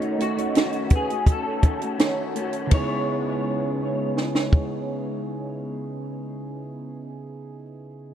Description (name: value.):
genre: indie pop, bedroom pop.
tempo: 83 BPM.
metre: 4/4.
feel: straight.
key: C# minor.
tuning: A4 = 441 Hz.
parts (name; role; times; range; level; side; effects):
electric guitar through a small old amp; melody; 0.0-7.1 s; D#4 to C#5; -31 LUFS; left 3 dB; ensemble chorus, dub echo.
vibraphone with medium hard mallets; second line; 0.0-4.8 s; B4 to D#5; -33 LUFS; right 4 dB; ensemble chorus, dub echo.
electric guitar through a small old amp; accompaniment; 0.0-7.2 s; C#3 to F#4; -31 LUFS; left 6 dB; analog chorus, warbly pitch drift.
soft electric-piano-like synth keys; accompaniment; 0.0-8.1 s; C#3 to G#4; -30 LUFS; right 4 dB; chorus, cassette tape, dub echo.
compact cocktail drum kit; drums; 0.0-4.7 s; hi-hat, kick drum, ride cymbal, snare drum; -20 LUFS; equal; none.
room: light reverb, small room ambience.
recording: echo-heavy mix.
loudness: -22 LUFS.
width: side -10 dB against mid.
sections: 0.0-2.7 A section; 2.7-5.6 B section.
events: none.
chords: 0.0 D#m7b5; 2.7 C#m7.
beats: 0.55 1.27 1.99 | 2.72 3.44 4.16 4.88.